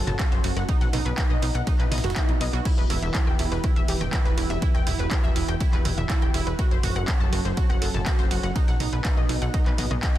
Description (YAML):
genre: melodic techno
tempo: 122 BPM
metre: 4/4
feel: straight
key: E harmonic minor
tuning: A4 = 437 Hz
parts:
  - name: lush unison pad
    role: sustained chords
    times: 0.0-10.2 s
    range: E3 to A4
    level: -33 LUFS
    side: equal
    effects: chorus, sidechain pumping
  - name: analog pluck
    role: arpeggios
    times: 0.0-10.2 s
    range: D#4 to A5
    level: -31 LUFS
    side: right 3 dB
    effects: chorus, sidechain pumping, ping-pong delay
  - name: plucky analog bass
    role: bass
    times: 0.0-10.2 s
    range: E1 to B1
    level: -28 LUFS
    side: equal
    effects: sidechain pumping
  - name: breakbeat sampler-style drum kit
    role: drums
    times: 0.1-10.2 s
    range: hi-hat, ride cymbal, snare drum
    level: -42 LUFS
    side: right 3 dB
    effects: none
  - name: punchy analog drum machine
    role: drums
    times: 0.1-10.2 s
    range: crash cymbal, handclaps, hi-hat, rim click, toms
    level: -31 LUFS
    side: equal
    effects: none
  - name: electronic kick drum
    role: drums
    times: 0.2-10.1 s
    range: none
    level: -23 LUFS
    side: equal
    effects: none
  - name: swell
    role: sound effects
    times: 1.8-2.7 s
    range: none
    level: -40 LUFS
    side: left 4 dB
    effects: none
room: digital ambience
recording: dense, heavily limited modern master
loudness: -21 LUFS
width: side -13 dB against mid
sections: 0.0-10.2 A section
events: swell 1.8-2.7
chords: 0.0 F#dim; 0.7 B; 2.7 Em; 6.6 F#dim; 8.6 B